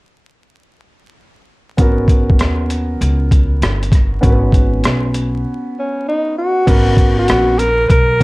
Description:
hip hop, jazz-hop; 98 BPM; 4/4; swing 66% on 16ths; G# minor; A4 = 440 Hz
dark grand piano; accompaniment; 1.8-8.2 s; B3 to B4; -20 LUFS; right 1 dB; plate reverb
upright bass; bass; 1.8-8.2 s; G1 to D#2; -17 LUFS; equal
boom bap sampler-style drum kit; drums; 1.8-8.2 s; crash cymbal, hi-hat, kick drum, rim click; -13 LUFS; equal; overdrive
breathy alto saxophone; melody; 5.8-8.2 s; C#4 to B4; -14 LUFS; equal; plate reverb
light reverb; dark, warm production, vinyl crackle; -12 LUFS; side -23 dB against mid
1.8-6.7 A section; 6.7-8.2 B section
break 5.5-6.7
1.8 G#m11

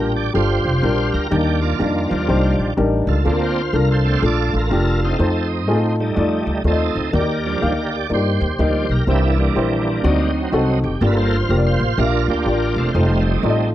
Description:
uptempo gospel; 124 BPM; 4/4; swing 63% on 8ths; Bb major; A4 = 440 Hz
dark upright piano; accompaniment; 0.0-13.7 s; G2 to F5; -20 LUFS; left 2 dB
bright tonewheel organ; sustained chords; 0.0-13.7 s; E3 to D5; -22 LUFS; right 3 dB; slow rotary speaker, overdrive, chorus vibrato
upright bass; bass; 0.0-13.7 s; E1 to A2; -20 LUFS; equal
studio ambience; dry, close 1970s-style studio recording; -16 LUFS; side -13 dB against mid
0.0-13.7 A section
tonewheel organ solo 0.0-13.7
0.0 Bb6; 1.3 Ebmaj7; 3.3 Bbmaj7; 5.2 F7; 7.1 Ebmaj7; 9.1 C7; 10.0 D7b9; 11.0 Gm7; 13.0 F7

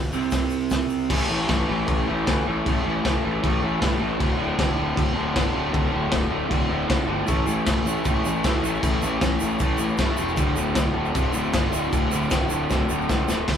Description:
garage rock duo or trio; 155 BPM; 4/4; straight; A4 = 440 Hz
raw garage guitar; riff; 0.0-13.5 s; D2 to C4; -24 LUFS; equal; overdrive
fuzz picked electric bass; bass; 0.0-13.6 s; D1 to G2; -29 LUFS; equal; overdrive
tube shaker; percussion; 0.0-1.0, 7.3-13.4 s; -39 LUFS; right 6 dB
crunchy breakbeat drum kit; drums; 0.3-13.6 s; crash cymbal, hi-hat, kick drum, snare drum; -24 LUFS; equal
light reverb; band playing live in one room; -20 LUFS; side -8 dB against mid
0.0-1.1 A section; 1.1-13.5 B section
drum fill 12.7-13.5
0.0 N.C.; 1.1 A5; 4.2 D5; 7.3 A5; 10.4 D5

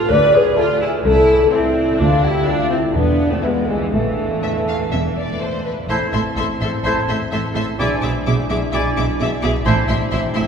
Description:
quick classical-period movement for symphony orchestra; 126 BPM; 4/4; uneven beats, rubato; A minor; A4 = 437 Hz
bright studio viola section; accompaniment; 0.0-10.4 s; E3 to B4; -24 LUFS; right 1 dB
dark French horn section; sustained chords; 0.0-10.5 s; G#3 to D5; -18 LUFS; left 1 dB
clear studio double bass section; bass; 0.1-10.4 s; E1 to D2; -24 LUFS; right 2 dB
rich studio cello section; bass; 0.1-10.4 s; C2 to B2; -24 LUFS; right 2 dB
rich studio violin section; melody; 0.6-10.4 s; F5 to D6; -31 LUFS; left 5 dB
warm studio violin section; second line; 0.6-10.4 s; B4 to F5; -29 LUFS; left 3 dB
timpani; percussion; 2.9-4.6 s; E2 to A2; -27 LUFS; equal
clear clarinet; second line; 5.9-9.8 s; E4; -29 LUFS; left 1 dB
hollow small flute group; second line; 5.9-9.9 s; G#5 to A5; -30 LUFS; right 5 dB
warm oboe; second line; 5.9-9.8 s; C5 to D5; -26 LUFS; equal
wet cathedral reverb, RT60 7.3 s; recorded in a church or concert hall; -15 LUFS; side -6 dB against mid
0.0-5.9 A section; 5.9-10.5 B section
0.1 E7/D; 1.1 Am/C; 2.0 Bdim/D; 2.9 E; 3.9 A5; 5.9 Am; 7.8 E7/B; 9.7 Am

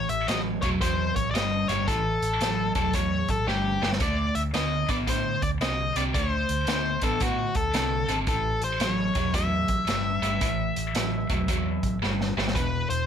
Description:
blues rock power trio and southern rock; 112 BPM; 4/4; swing 65% on 8ths; A4 = 439 Hz
octave-fuzz lead guitar; melody; 0.0-13.1 s; F#4 to E5; -28 LUFS; left 2 dB; distortion
tight distorted guitar; riff; 0.0-13.1 s; E2 to C4; -28 LUFS; right 1 dB; distortion
overdriven picked electric bass; bass; 0.0-13.1 s; E1 to A2; -31 LUFS; equal
vintage drum kit; drums; 0.1-13.0 s; hi-hat, kick drum, snare drum; -31 LUFS; equal
moderate club reverb, RT60 0.5 s; -23 LUFS; side -8 dB against mid
0.0-13.1 A section
drum fill 3.5-4.0, 12.0-12.6
0.0 A5; 4.0 D5; 8.3 A7(no3); 12.6 E5

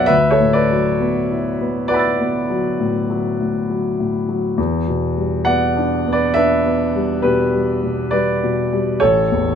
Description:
classical, impressionist solo piano; 68 BPM; 5/4; rubato; A4 = 440 Hz
warm concert grand piano; solo; 0.0-9.6 s; A1 to A6; -15 LUFS; left 1 dB
light reverb; -16 LUFS; side -8 dB against mid
0.0-9.6 A section
0.1 D69; 4.6 Em7; 9.0 A

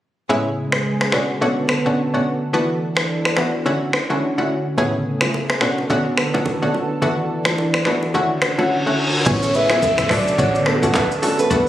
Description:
afrobeats; 107 BPM; 4/4; swing 58% on 16ths; A major; A4 = 440 Hz
analog pluck; accompaniment; 0.3-11.7 s; A2 to G#4; -21 LUFS; left 1 dB; chorus
lush unison pad; sustained chords; 0.3-11.7 s; C#3 to A4; -23 LUFS; equal; chorus
afro-pop drum kit; drums; 0.7-11.7 s; finger snaps, handclaps, hi-hat, kick drum, rim click, shaker; -22 LUFS; equal
congas and bongos; percussion; 4.8-11.7 s; -28 LUFS; right 2 dB
reverse cymbal and downlifter; sound effects; 8.4-11.7 s; -25 LUFS; left 1 dB
soft octave-layered synth lead; melody; 9.3-11.7 s; F#4 to E5; -19 LUFS; equal; chorus, tape echo
short 808-style bass; bass; 9.3-11.7 s; E1 to B1; -26 LUFS; equal
nylon-string guitar; riff; 9.4-11.5 s; E4 to C#5; -24 LUFS; right 3 dB; tape echo
moderate lush hall reverb, RT60 2.2 s; recorded on a phone in the room, studio reverb; -16 LUFS; side -12 dB against mid
0.3-9.3 A section; 9.3-11.7 B section
reverse cymbal 8.4-9.3
0.3 Amaj7; 1.1 Bm7; 2.5 E7sus4; 3.7 Dmaj7; 4.8 Amaj7; 5.6 Bm7; 7.0 E7sus4; 8.1 Dmaj7; 9.3 Amaj7; 10.1 Bm7

